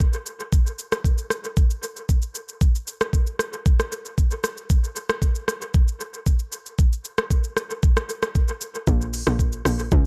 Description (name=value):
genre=amapiano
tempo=115 BPM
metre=4/4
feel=straight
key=Bb minor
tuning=A4 = 440 Hz
part: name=smooth R&B drum kit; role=drums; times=0.0-10.0 s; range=hi-hat, kick drum, rim click, shaker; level=-23 LUFS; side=equal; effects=dub echo
part: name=tight log drum bass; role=bass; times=8.9-10.1 s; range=Bb1 to Db2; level=-25 LUFS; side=equal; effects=none
room=little or no reverb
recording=echo-heavy mix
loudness=-23 LUFS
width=mono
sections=0.0-8.9 A section; 8.9-10.1 B section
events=drop 8.9-10.1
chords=none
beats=0.00 | 0.53 1.05 1.57 2.09 | 2.61 3.13 3.66 4.18 | 4.70 5.22 5.74 6.26 | 6.79 7.31 7.83 8.35 | 8.87 9.39 9.92